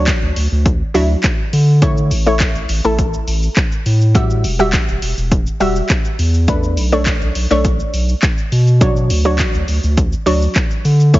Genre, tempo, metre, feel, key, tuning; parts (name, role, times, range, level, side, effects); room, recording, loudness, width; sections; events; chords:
dance-pop; 103 BPM; 4/4; straight; A4 = 440 Hz
analog pluck; accompaniment; 0.0-11.2 s; F#3 to E5; -19 LUFS; equal; chorus, sidechain pumping
round analog bass; bass; 0.0-11.2 s; E1 to D3; -14 LUFS; equal; sidechain pumping
punchy analog drum machine; drums; 0.1-11.2 s; handclaps, hi-hat, kick drum, shaker; -17 LUFS; equal
little or no reverb; heavily compressed radio sound, multiband compression, nothing above 7.5 kHz; -13 LUFS; side -17 dB against mid
0.0-11.2 A section
0.0 Dmaj7; 1.8 A; 4.2 Emadd9; 6.5 Bm7; 8.8 Dmaj7